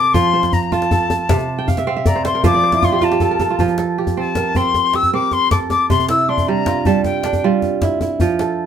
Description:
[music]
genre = west african traditional, West African string and xylophone music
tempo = 104 BPM (dotted quarters)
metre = 12/8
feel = straight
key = C mixolydian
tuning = A4 = 438 Hz
[part]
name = bright silver concert flute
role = melody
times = 0.0-7.5 s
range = G5 to E6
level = -17 LUFS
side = left 5 dB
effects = none
[part]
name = kora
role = arpeggios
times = 0.0-8.7 s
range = C3 to G5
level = -18 LUFS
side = right 5 dB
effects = none
[part]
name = djembe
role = percussion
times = 0.0-8.5 s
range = none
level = -20 LUFS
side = left 2 dB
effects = none
[sound]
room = moderate studio reverb, RT60 0.6 s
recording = band playing live in one room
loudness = -14 LUFS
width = side -8 dB against mid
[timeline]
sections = 0.0-3.6 A section; 3.6-8.7 B section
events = flute solo 0.0-3.6; kora fill 1.6-3.6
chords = 0.1 F; 1.3 Cadd9; 2.4 N.C.; 3.6 F; 5.9 C

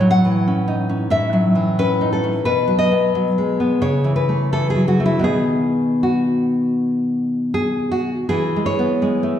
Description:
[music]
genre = romantic piece for solo classical guitar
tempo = 76-92 BPM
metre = 4/4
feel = rubato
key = unclear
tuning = A4 = 440 Hz
[part]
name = nylon-string guitar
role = solo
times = 0.0-9.4 s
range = A2 to F#5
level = -16 LUFS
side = left 1 dB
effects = none
[sound]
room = wet recital hall reverb, RT60 1.6 s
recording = recorded in a church or concert hall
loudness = -16 LUFS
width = side -10 dB against mid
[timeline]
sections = 0.0-8.3 A section; 8.3-9.4 A section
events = none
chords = 0.0 F#m7/A; 2.4 B; 3.8 A/C#; 5.3 B; 8.3 E

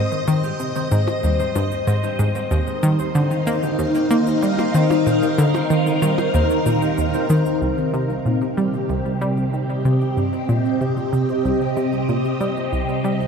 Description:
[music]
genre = ambient, sequencer-driven space music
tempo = 94 BPM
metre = 4/4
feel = straight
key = C minor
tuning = A4 = 440 Hz
[part]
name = phased string machine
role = sustained chords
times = 0.0-13.3 s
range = C3 to F5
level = -21 LUFS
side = equal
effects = ensemble chorus, phaser
[part]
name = Celtic harp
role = arpeggios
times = 0.0-10.3 s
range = G3 to C5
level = -26 LUFS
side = moving between left 6 dB and equal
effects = auto-pan, analog delay
[part]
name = analog pluck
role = riff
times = 0.0-13.3 s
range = C2 to Bb3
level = -20 LUFS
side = equal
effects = chorus, analog delay
[part]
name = cabasa and percussion blips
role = percussion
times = 0.1-13.3 s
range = none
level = -34 LUFS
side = left 1 dB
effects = analog delay
[sound]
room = wet huge ambient reverb, RT60 8.6 s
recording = dark, warm production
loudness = -17 LUFS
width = side -6 dB against mid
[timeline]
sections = 0.0-7.6 A section; 7.6-13.3 B section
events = none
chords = 0.0 Ab; 2.5 Ebsus2; 7.6 Cm

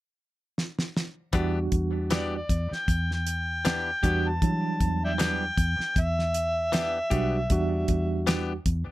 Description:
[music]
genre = straight-eighth soul blues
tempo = 78 BPM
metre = 4/4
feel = swing 55% on 16ths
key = E minor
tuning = A4 = 444 Hz
[part]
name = damped 70s drum kit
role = drums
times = 0.6-8.9 s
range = hi-hat, kick drum, snare drum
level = -27 LUFS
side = equal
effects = none
[part]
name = tine electric piano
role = accompaniment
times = 1.3-8.5 s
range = F#3 to F#4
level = -30 LUFS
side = right 4 dB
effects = medium stereo tremolo
[part]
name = direct-recorded clean electric guitar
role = stabs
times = 1.3-8.5 s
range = E3 to G4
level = -33 LUFS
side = left 6 dB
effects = analog delay
[part]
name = vintage muted fingered electric bass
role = bass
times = 1.3-8.9 s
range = B1 to E3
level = -29 LUFS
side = equal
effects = none
[part]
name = overdriven harmonica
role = melody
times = 2.1-8.3 s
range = D5 to A5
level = -29 LUFS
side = equal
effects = none
[sound]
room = little or no reverb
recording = none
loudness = -24 LUFS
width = side -16 dB against mid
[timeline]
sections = 0.0-1.3 A section; 1.3-8.9 B section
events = drum fill 0.6-1.3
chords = 0.0 N.C.; 1.3 Em7

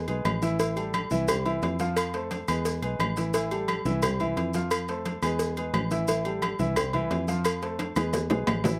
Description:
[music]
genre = latin, salsa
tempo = 175 BPM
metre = 4/4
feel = straight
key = A minor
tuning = A4 = 440 Hz
[part]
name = dark grand piano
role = accompaniment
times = 0.0-8.8 s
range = E3 to F5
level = -33 LUFS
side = equal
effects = slapback echo
[part]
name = fingered electric bass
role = bass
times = 0.0-8.8 s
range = A1 to F2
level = -34 LUFS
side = equal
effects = none
[part]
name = agogo bells and timbales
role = percussion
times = 0.1-8.7 s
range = none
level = -34 LUFS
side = equal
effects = slapback echo
[part]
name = congas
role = percussion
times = 0.1-8.7 s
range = none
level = -39 LUFS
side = equal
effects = none
[part]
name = maracas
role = percussion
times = 0.1-8.8 s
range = none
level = -45 LUFS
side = equal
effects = none
[part]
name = cowbell and bongos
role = percussion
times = 0.2-8.8 s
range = none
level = -34 LUFS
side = equal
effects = slapback echo
[part]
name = claves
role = percussion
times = 0.3-8.7 s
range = none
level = -43 LUFS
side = equal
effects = none
[sound]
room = little or no reverb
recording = recorded outdoors, with no room sound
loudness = -28 LUFS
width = mono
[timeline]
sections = 0.0-8.8 A section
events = drum fill 7.8-8.8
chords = 0.0 E; 0.6 Am7; 1.3 C; 2.0 F; 2.7 E; 3.3 Am7; 4.0 C; 4.7 F; 5.4 E; 6.1 Am7; 6.8 C; 7.5 F; 8.1 E

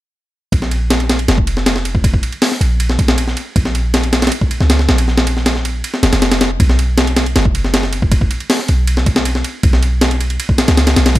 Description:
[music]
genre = drum and bass, jungle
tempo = 158 BPM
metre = 4/4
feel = straight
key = Bb phrygian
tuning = A4 = 442 Hz
[part]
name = warm 808-style bass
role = bass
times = 0.5-11.2 s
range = F1 to Db2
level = -15 LUFS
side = equal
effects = none
[part]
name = breakbeat sampler-style drum kit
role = drums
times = 0.5-11.2 s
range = hi-hat, kick drum, ride cymbal, snare drum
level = -14 LUFS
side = equal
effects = small room ambience
[sound]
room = little or no reverb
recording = none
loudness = -12 LUFS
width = side -16 dB against mid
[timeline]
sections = 0.5-11.2 A section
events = none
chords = none

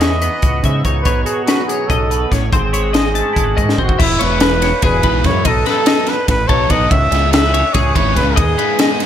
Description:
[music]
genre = math rock and midwest emo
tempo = 288 BPM (eighths)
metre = 7/8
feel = straight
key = E major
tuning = A4 = 440 Hz
[part]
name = breathy trumpet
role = melody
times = 0.0-9.0 s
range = E4 to E5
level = -18 LUFS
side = equal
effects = none
[part]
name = twangy electric guitar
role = accompaniment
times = 0.0-4.0 s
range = G#2 to F#4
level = -24 LUFS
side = right 5 dB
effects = analog chorus
[part]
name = twelve-string electric guitar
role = arpeggios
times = 0.0-9.1 s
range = G#4 to A5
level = -22 LUFS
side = left 6 dB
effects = analog chorus
[part]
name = growling fingered electric bass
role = bass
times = 0.0-8.5 s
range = E1 to C#3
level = -18 LUFS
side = equal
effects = overdrive
[part]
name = crisp fusion drum kit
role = drums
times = 0.0-9.1 s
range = crash cymbal, hi-hat, kick drum, ride cymbal, snare drum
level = -16 LUFS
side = equal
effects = none
[part]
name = crunchy overdriven guitar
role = riff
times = 4.2-9.1 s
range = E3 to A4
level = -21 LUFS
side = equal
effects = wide subtle chorus
[sound]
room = moderate plate reverb, RT60 1.3 s, studio ambience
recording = dreamy mix soaked in reverb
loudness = -12 LUFS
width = side -10 dB against mid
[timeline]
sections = 0.0-4.0 A section; 4.0-9.1 B section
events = drum fill 3.7-4.0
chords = 0.0 C#m11; 1.1 B9; 2.5 G#7b9; 4.0 E6; 5.5 B7; 6.9 C#m7; 8.4 G#m/D#

